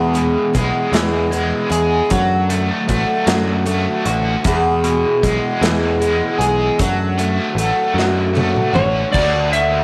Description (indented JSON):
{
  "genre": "folk rock and heartland rock",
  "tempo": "51 BPM (dotted quarters)",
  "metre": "6/8",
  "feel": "straight",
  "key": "unclear",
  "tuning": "A4 = 443 Hz",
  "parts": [
    { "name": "picked twelve-string acoustic guitar", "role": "accompaniment", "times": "0.0-9.8 s", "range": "E2 to G#4", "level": "-22 LUFS", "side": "equal", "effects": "none" },
    { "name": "biting overdriven guitar", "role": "riff", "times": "0.0-9.8 s", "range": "E2 to G#4", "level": "-23 LUFS", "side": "equal", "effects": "harmonic tremolo" },
    { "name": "picked electric bass", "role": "bass", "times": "0.0-9.8 s", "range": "A1 to F#2", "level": "-23 LUFS", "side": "equal", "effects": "none" },
    { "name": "loose indie drum kit", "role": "drums", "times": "0.2-9.7 s", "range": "crash cymbal, hi-hat, kick drum, snare drum, toms", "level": "-24 LUFS", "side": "equal", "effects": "none" },
    { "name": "electric slide guitar", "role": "melody", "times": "8.8-9.8 s", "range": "C#5 to E5", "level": "-19 LUFS", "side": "equal", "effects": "none" }
  ],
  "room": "moderate plate reverb, RT60 2.0 s, small room ambience",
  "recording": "none",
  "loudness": "-17 LUFS",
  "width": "mono",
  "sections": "0.0-9.1 A section",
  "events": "drum fill 8.0-9.1",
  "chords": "0.0 E; 2.1 D; 4.5 E; 6.8 D"
}